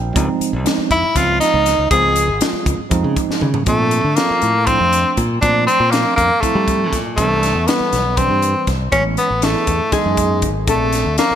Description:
electric jazz fusion; 240 BPM (eighths); 7/8; straight; A4 = 440 Hz
bell-like tine electric piano; accompaniment; 0.0-11.4 s; E3 to G5; -23 LUFS; right 6 dB; lush chorus
modern bright fingered electric bass; bass; 0.0-11.3 s; Ab1 to G3; -20 LUFS; equal
crisp fusion drum kit; drums; 0.2-11.3 s; hi-hat, kick drum, snare drum, toms; -21 LUFS; left 1 dB; gated reverb
bright tenor saxophone; melody; 0.9-11.4 s; G#3 to Ab4; -16 LUFS; left 1 dB
archtop guitar, miked and amplified; second line; 9.9-11.4 s; G#4 to Bb4; -23 LUFS; left 8 dB
moderate lush hall reverb, RT60 1.9 s; bright 1980s-style digital production; -14 LUFS; side -9 dB against mid
0.0-3.7 A section; 3.7-11.4 B section
tine electric piano fill 0.0; tenor saxophone solo 0.0-3.7; drum fill 3.3-3.7
0.2 Dbmaj9; 3.7 Bbmaj9; 7.2 Cmaj9; 8.9 Amaj9; 10.7 Bbmaj9
| 0.16 0.41 0.66 0.91 1.16 1.41 1.66 | 1.91 2.16 2.41 2.67 2.92 3.17 3.42 | 3.67 3.92 4.17 4.42 4.67 4.92 5.17 | 5.42 5.67 5.92 6.17 6.42 6.67 6.92 | 7.17 7.42 7.68 7.93 8.18 8.43 8.68 | 8.93 9.18 9.43 9.68 9.93 10.18 10.43 | 10.68 10.93 11.18

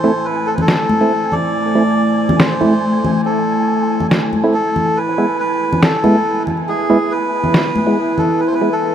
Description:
deep dubstep; 140 BPM; 4/4; half-time; A harmonic minor; A4 = 439 Hz
melodica; melody; 0.0-8.9 s; G#4 to D5; -18 LUFS; equal; dub echo
deep dark ambient pad; sustained chords; 0.0-8.9 s; A3 to E5; -20 LUFS; equal; chorus, built-in reverb
percussive organ stab; stabs; 0.0-8.7 s; G#3 to E4; -20 LUFS; right 2 dB; chorus, dub echo
flickering grainy texture; texture; 0.0-8.9 s; G#5; -28 LUFS; right 1 dB; built-in reverb
congas; percussion; 0.6-8.3 s; -21 LUFS; left 1 dB
electronic snare drum; drums; 0.7-7.6 s; -15 LUFS; equal
moderate huge ambient reverb, RT60 6.2 s; vinyl crackle; -13 LUFS; side -9 dB against mid
0.0-8.9 A section
filter sweep on ambient pad 0.0-8.9
0.0 Am; 5.0 E
0.25 0.68 1.11 | 1.54 1.97 2.40 2.83 | 3.25 3.68 4.11 4.54 | 4.97 5.40 5.83 6.25 | 6.68 7.11 7.54 7.97 | 8.40 8.83

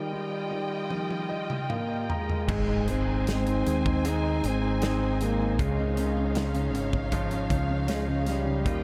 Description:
pop ballad; 78 BPM; 4/4; straight; Ab major; A4 = 439 Hz
mellow French horn; melody; 0.0-8.8 s; G3 to Eb4; -34 LUFS; equal
clear grand piano; accompaniment; 0.0-8.8 s; Db3 to Bb5; -35 LUFS; equal
warm studio string section; sustained chords; 0.0-8.8 s; Eb4 to Ab5; -38 LUFS; equal
modern studio drum kit; drums; 0.9-8.8 s; crash cymbal, hi-hat, kick drum, snare drum, toms; -35 LUFS; equal
direct-recorded clean electric guitar; arpeggios; 2.5-8.8 s; Ab2 to Ab4; -40 LUFS; equal; tape echo
fingered electric bass; bass; 2.5-8.8 s; Ab1 to Eb2; -32 LUFS; equal
impact; sound effects; 2.5-5.6 s; -40 LUFS; equal
moderate huge ambient reverb, RT60 8.6 s; dreamy mix soaked in reverb; -28 LUFS; mono
0.0-2.5 A section; 2.5-8.8 B section
break 0.0-2.5; grand piano fill 0.9-2.5; drum fill 0.9-2.5; impact 2.5-5.6
0.0 Ebadd9; 2.5 Ab; 5.6 Dbadd9
0.13 0.90 1.69 | 2.48 3.27 4.05 4.82 | 5.59 6.36 7.12 7.89 | 8.66

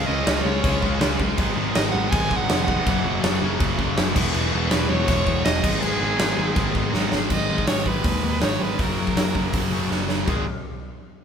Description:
punk rock; 162 BPM; 4/4; straight; G# minor; A4 = 440 Hz
edgy soprano saxophone; melody; 0.0-10.4 s; G#4 to G#5; -27 LUFS; right 2 dB
high-gain distorted guitar; riff; 0.0-7.1 s; F#2 to E#4; -29 LUFS; equal; distortion
sludgy distorted guitar; riff; 0.0-10.4 s; E2 to C#4; -28 LUFS; left 8 dB; overdrive
tight distorted guitar; riff; 0.0-10.4 s; E2 to C#4; -29 LUFS; right 9 dB; distortion
overdriven picked electric bass; bass; 0.0-10.4 s; E1 to D#2; -27 LUFS; equal
big rock drum kit; drums; 0.3-10.4 s; china cymbal, crash cymbal, hi-hat, kick drum, snare drum, toms; -23 LUFS; equal
light reverb; band playing live in one room; -19 LUFS; side -7 dB against mid
0.0-7.3 A section; 7.3-10.3 B section
drum fill 6.9-7.3, 9.9-10.3
0.0 C#; 1.4 G#m; 2.9 F#; 4.2 E; 5.6 G#m; 8.8 F#; 10.3 G#5
0.26 0.63 1.00 | 1.38 1.75 2.12 2.49 | 2.86 3.23 3.60 3.97 | 4.34 4.71 5.08 5.45 | 5.82 6.19 6.56 6.93 | 7.30 7.67 8.05 8.42 | 8.79 9.16 9.53 9.90 | 10.27

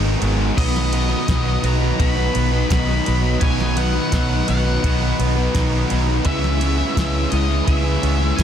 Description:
rock, shoegaze and dream pop; 84 BPM; 4/4; straight; B major; A4 = 440 Hz
direct-recorded clean electric guitar; arpeggios; 0.0-8.4 s; E3 to G#4; -32 LUFS; right 11 dB; ensemble chorus, slapback echo
overdriven electric guitar; riff; 0.0-8.4 s; G#2 to B4; -26 LUFS; right 11 dB; reverse reverb
overdriven semi-hollow guitar; riff; 0.0-8.4 s; G#2 to E4; -24 LUFS; left 14 dB; ensemble chorus
tight distorted guitar; riff; 0.0-8.4 s; G#2 to C#4; -28 LUFS; left 1 dB; distortion
vintage muted fingered electric bass; bass; 0.0-8.4 s; G#1 to C#2; -20 LUFS; equal
soft vintage rhythm box; drums; 0.2-8.4 s; crash cymbal, kick drum, ride cymbal, snare drum; -24 LUFS; equal; overdrive
octave-fuzz lead guitar; melody; 0.6-8.4 s; D#5 to B5; -27 LUFS; left 2 dB; distortion, slapback echo
chorused pulse-width pad; sustained chords; 0.6-8.4 s; E4 to D#6; -31 LUFS; equal
little or no reverb; dense, heavily limited modern master; -16 LUFS; side -9 dB against mid
0.0-8.4 A section
break 0.0-0.6
0.0 G#m7; 0.6 B; 6.3 C#m7
| 0.57 1.28 1.99 2.70 | 3.41 4.12 4.83 5.54 | 6.25 6.96 7.67 8.38

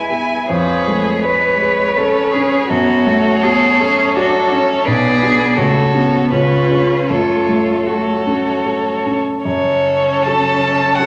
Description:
classical, slow romantic movement for piano quintet; 73-87 BPM; 3/4; rubato; F# minor; A4 = 440 Hz
warm violin; melody; 0.0-11.1 s; C#5 to A5; -22 LUFS; equal
rich cello; second line; 0.0-11.1 s; C#3 to B4; -20 LUFS; equal
rich violin; second line; 0.0-11.1 s; A4 to B4; -23 LUFS; equal
warm grand piano; accompaniment; 0.0-11.1 s; B1 to B4; -21 LUFS; equal
warm viola; accompaniment; 0.0-11.1 s; E#3 to D4; -22 LUFS; equal
wet recital hall reverb, RT60 1.6 s; -15 LUFS; mono
0.0-9.5 A section; 9.5-11.1 B section
0.5 C#7/E#; 2.7 F#m; 4.9 Bm; 5.6 F#m/C#; 6.3 C#7; 7.1 F#m
| 0.50 1.24 1.97 | 2.70 3.44 4.16 | 4.87 5.57 6.31 | 7.08 7.86 8.65 | 9.45 10.25 10.98

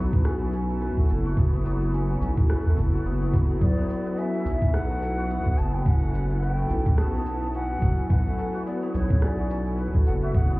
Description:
organic downtempo; 107 BPM; 4/4; swing 57% on 16ths; A4 = 440 Hz
bowed-like drone; sustained chords; 0.0-10.6 s; F#3 to A4; -33 LUFS; equal; built-in reverb, sidechain pumping
santur; arpeggios; 0.0-10.6 s; F#3 to B4; -32 LUFS; left 2 dB; tape echo
warm sub bass; bass; 0.0-10.6 s; F#1 to E2; -25 LUFS; equal
bronze singing bowl; texture; 0.0-10.6 s; F#3 to F#4; -38 LUFS; left 3 dB
electronic kick drum; drums; 0.1-10.5 s; -22 LUFS; equal
electronic shaker and rim click; drums; 0.1-10.6 s; -36 LUFS; equal
breathy bright bass bansuri; melody; 3.6-10.6 s; C#5 to A5; -33 LUFS; equal; tape echo
light reverb, small room ambience; heard muffled through a wall, club reverb, EQ; -22 LUFS; side -21 dB against mid
0.0-10.6 A section
0.0 B7(no3)
0.25 0.81 | 1.37 1.94 2.50 3.06 | 3.62 4.18 4.74 5.30 | 5.86 6.42 6.98 7.54 | 8.10 8.66 9.22 9.79 | 10.35

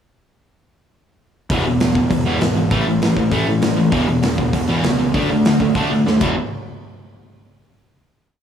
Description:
punk rock; 197 BPM; 4/4; straight; E mixolydian; A4 = 440 Hz
distorted electric guitar; riff; 1.5-6.3 s; E2 to D4; -17 LUFS; equal; distortion
fuzz picked electric bass; bass; 1.5-6.4 s; E1 to D#2; -21 LUFS; equal; overdrive
big rock drum kit; drums; 1.5-6.3 s; crash cymbal, hi-hat, kick drum, snare drum; -21 LUFS; equal
little or no reverb; studio reverb; -15 LUFS; side -8 dB against mid
1.5-6.4 verse; 6.4-7.6 final hit
drum fill 6.1-6.4
1.5 E; 2.7 A5; 3.9 E5; 5.1 D5; 6.2 E5; 6.4 N.C.
| 1.50 1.80 2.10 2.41 | 2.71 3.02 3.32 3.62 | 3.93 4.23 4.54 4.84 | 5.15 5.45 5.76 6.07

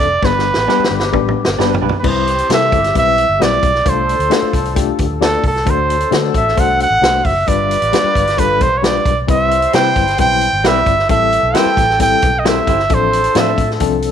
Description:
uptempo 1960s-style soul; 133 BPM; 4/4; straight; C major; A4 = 439 Hz
clear trumpet; melody; 0.0-13.7 s; A4 to G5; -14 LUFS; right 3 dB
barky reed electric piano; accompaniment; 0.0-14.1 s; F3 to D5; -19 LUFS; left 12 dB; overdrive, fast tremolo
vintage muted fingered electric bass; bass; 0.0-14.1 s; F1 to D3; -22 LUFS; equal
vintage drum kit; drums; 0.0-14.1 s; crash cymbal, hi-hat, kick drum, snare drum, toms; -18 LUFS; equal
warm horn section; second line; 0.2-14.1 s; D3 to C5; -25 LUFS; left 11 dB; tape echo
electric guitar through a small old amp; stabs; 0.7-1.9, 9.7-13.5 s; C4 to C5; -22 LUFS; right 12 dB
light reverb, studio ambience; 1960s-style stereo with parts hard left and right; -12 LUFS; side -8 dB against mid
0.0-2.0 A section; 2.0-14.1 A section
drum fill 0.2-2.0
0.2 G; 2.0 Cmaj7; 3.9 F6/C; 5.7 D7; 7.5 G7; 9.3 Cmaj7; 11.1 Am7; 12.9 Dm7/A
| 0.22 0.68 1.13 1.58 | 2.04 2.49 2.95 3.40 | 3.85 4.31 4.76 5.21 | 5.67 6.12 6.57 7.03 | 7.48 7.93 8.38 8.84 | 9.29 9.74 10.19 10.64 | 11.10 11.55 12.00 12.45 | 12.90 13.35 13.80

